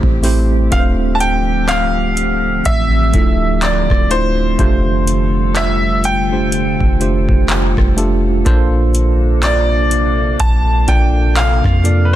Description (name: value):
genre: contemporary R&B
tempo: 62 BPM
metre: 4/4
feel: swing 58% on 16ths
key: D minor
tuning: A4 = 440 Hz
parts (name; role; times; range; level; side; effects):
- mellow tine electric piano; accompaniment; 0.0-12.2 s; A3 to D5; -20 LUFS; right 3 dB; medium stereo tremolo
- glassy FM pad; sustained chords; 0.0-12.2 s; C3 to A4; -22 LUFS; left 1 dB; ensemble chorus, built-in reverb, sidechain pumping
- soft 808-style bass; bass; 0.0-12.2 s; D1 to F2; -16 LUFS; equal; none
- booming analog drum machine; drums; 0.0-12.1 s; handclaps, hi-hat, kick drum, rim click; -16 LUFS; equal; overdrive
- bright grand piano; melody; 0.7-12.2 s; B4 to A5; -18 LUFS; equal; ping-pong delay
room: little or no reverb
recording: dense, heavily limited modern master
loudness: -12 LUFS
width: side -13 dB against mid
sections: 0.0-12.2 A section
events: none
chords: 0.0 Am7; 0.7 Dm9; 4.6 F69; 8.5 Bbmaj9